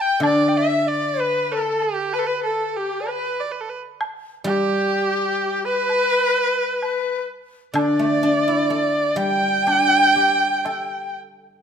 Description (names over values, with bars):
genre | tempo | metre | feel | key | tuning
chinese traditional, Chinese chamber ensemble | 64 BPM | 4/4 | straight | G gong mode | A4 = 441 Hz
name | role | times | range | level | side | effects
rich erhu | melody | 0.0-11.2 s | G4 to G5 | -21 LUFS | right 5 dB | none
bright reedy large dizi | second line | 0.0-11.2 s | G4 to G5 | -23 LUFS | left 6 dB | none
guzheng | accompaniment | 0.2-11.6 s | D3 to A4 | -23 LUFS | left 1 dB | none
woodblock | percussion | 0.2-10.9 s | none | -29 LUFS | right 1 dB | none
room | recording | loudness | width
moderate recital hall reverb, RT60 1.4 s | none | -18 LUFS | side -7 dB against mid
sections
0.0-11.6 A section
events
none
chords
none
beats
| 0.23 1.18 2.11 3.05 | 3.99 4.93 5.88 6.82 | 7.75 8.70 9.66 10.65